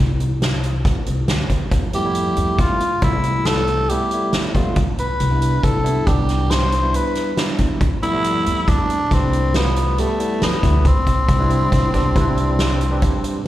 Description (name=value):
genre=progressive instrumental, band music in an uneven meter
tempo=138 BPM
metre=7/4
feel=straight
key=C major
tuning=A4 = 439 Hz
part: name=upright bass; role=bass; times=0.0-13.0 s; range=C2 to F3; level=-20 LUFS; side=equal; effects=none
part: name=soft-mallet drum kit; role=drums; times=0.2-13.3 s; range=hi-hat, kick drum, snare drum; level=-21 LUFS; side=equal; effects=none
part: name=breathy tenor saxophone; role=melody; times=1.9-13.5 s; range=A3 to C5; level=-21 LUFS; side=left 1 dB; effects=plate reverb, slapback echo
part: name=barky tine electric piano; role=accompaniment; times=1.9-13.4 s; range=G3 to B4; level=-24 LUFS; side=right 2 dB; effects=medium stereo tremolo, plate reverb, slapback echo
room=light reverb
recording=live gig heard through the venue's PA, club reverb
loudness=-16 LUFS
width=side -14 dB against mid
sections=0.0-13.5 A section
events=none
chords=0.0 N.C.; 1.7 Fmaj9#11; 4.8 Cmaj7; 7.8 Fmaj9#11; 10.9 Cmaj7